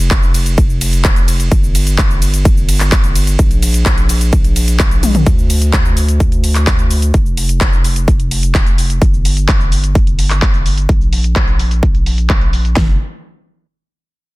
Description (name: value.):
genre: EDM, festival progressive house.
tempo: 128 BPM.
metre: 4/4.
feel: straight.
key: unclear.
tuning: A4 = 440 Hz.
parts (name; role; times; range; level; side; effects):
saturated sub bass; bass; 0.0-13.0 s; F1 to D2; -14 LUFS; equal; sidechain pumping.
big-room dance drum kit; drums; 0.1-12.9 s; kick drum, snare drum; -12 LUFS; equal; overdrive.
big-room dance drum kit; drums; 0.1-12.7 s; cabasa, handclaps, hi-hat, ride cymbal, toms; -18 LUFS; equal; overdrive, low-pass filter on perc, low-pass filter on hats, low-pass filter on cymbals, low-pass filter on snare, low-pass filter on toms.
room: digital ambience.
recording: dense, heavily limited modern master.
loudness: -10 LUFS.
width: side -20 dB against mid.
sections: 0.0-5.3 A section; 5.3-12.8 B section; 12.8-14.4 C section.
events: drop 0.0-5.3; drum fill 5.0.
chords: none.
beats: 0.11 0.58 1.05 | 1.52 1.99 2.45 2.92 | 3.39 3.86 4.33 4.80 | 5.27 5.74 6.20 6.67 | 7.14 7.61 8.08 8.55 | 9.02 9.48 9.95 10.42 | 10.89 11.36 11.83 12.30 | 12.77.